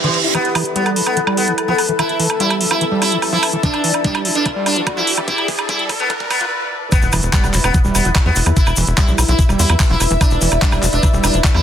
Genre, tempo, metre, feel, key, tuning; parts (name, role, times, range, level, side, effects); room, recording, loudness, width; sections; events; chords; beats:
psychedelic trance; 146 BPM; 4/4; straight; E minor; A4 = 440 Hz
sitar; melody; 0.0-11.6 s; E3 to E4; -20 LUFS; equal; phaser, sidechain pumping, dub echo
bubbling stepped-filter texture; sustained chords; 0.0-11.6 s; E4 to A4; -25 LUFS; left 3 dB; chorus, built-in reverb, sidechain pumping
overdriven acid bass; riff; 0.0-11.6 s; D3 to F4; -23 LUFS; right 2 dB; auto-pan, sidechain pumping, ping-pong delay
garage drum kit; drums; 0.0-11.6 s; handclaps, hi-hat, woodblock; -20 LUFS; right 2 dB; low-pass filter on hats, low-pass filter on perc, low-pass filter on snare
reverse cymbal, riser and impact; sound effects; 0.0-8.6 s; -25 LUFS; right 1 dB
granular cloud pad; texture; 0.0-11.6 s; E4 to E5; -26 LUFS; equal; built-in reverb, sidechain pumping
electronic kick drum; drums; 3.6-11.5 s; -15 LUFS; equal
tube shaker; percussion; 6.9-11.5 s; -26 LUFS; left 4 dB
tight sequencer bass; bass; 7.0-11.6 s; E1 to E2; -17 LUFS; equal
light reverb; dense, heavily limited modern master, high-pass filter; -13 LUFS; side -9 dB against mid
0.3-6.9 A section; 6.9-11.6 B section
reverse cymbal 0.0-0.3; build-up 0.3-6.9; riser 0.3-6.5; filter sweep on acid bass 0.3-6.9; filter sweep 0.3-6.9; drum fill 3.6-6.5; stop 6.5-6.9; drop 6.9-11.6; impact 6.9-8.6
0.3 E5
| 0.35 0.76 1.17 1.58 | 1.99 2.40 2.81 3.22 | 3.63 4.04 4.46 4.87 | 5.28 5.69 6.10 6.51 | 6.92 7.33 7.74 8.15 | 8.56 8.98 9.39 9.80 | 10.21 10.62 11.03 11.44